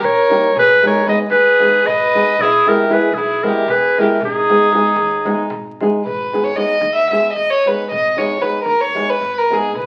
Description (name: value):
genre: balkan folk, Balkan wedding band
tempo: 228 BPM (eighths)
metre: 7/8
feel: straight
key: G# harmonic minor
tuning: A4 = 440 Hz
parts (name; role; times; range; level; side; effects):
- clear clarinet; melody; 0.0-5.5 s; G#4 to D#5; -16 LUFS; equal; none
- warm violin; second line; 0.0-9.9 s; D#4 to E5; -20 LUFS; equal; none
- upright bass; bass; 0.0-9.9 s; E1 to D#2; -38 LUFS; equal; none
- darbuka; percussion; 0.0-9.9 s; none; -40 LUFS; equal; none
- flamenco guitar; accompaniment; 0.3-9.7 s; G3 to G#4; -22 LUFS; equal; none
room: wet large studio reverb, RT60 0.8 s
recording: very old 78 rpm record, vinyl crackle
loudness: -15 LUFS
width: mono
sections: 0.0-6.1 A section; 6.1-9.9 B section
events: violin solo 6.1-9.9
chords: 0.0 D#; 0.6 G#m; 2.4 E; 4.2 G#m